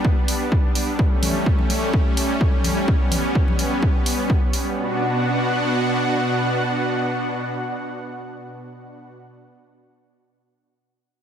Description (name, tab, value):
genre	progressive house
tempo	127 BPM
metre	4/4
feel	straight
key	B minor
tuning	A4 = 440 Hz
part	supersaw pad	sustained chords	0.0-9.1 s	B2 to F#5	-22 LUFS	equal	sidechain pumping
part	electronic kick drum	drums	0.0-4.4 s	none	-19 LUFS	equal	overdrive
part	electronic hi-hat	drums	0.3-4.6 s	none	-27 LUFS	right 1 dB	none
part	congas	percussion	1.2-3.6 s	none	-30 LUFS	left 5 dB	sidechain pumping on perc
room	light reverb, digital ambience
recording	none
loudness	-18 LUFS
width	side -8 dB against mid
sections	0.0-4.8 A section; 4.8-8.6 B section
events	none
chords	0.0 G; 1.0 A7; 4.8 Bm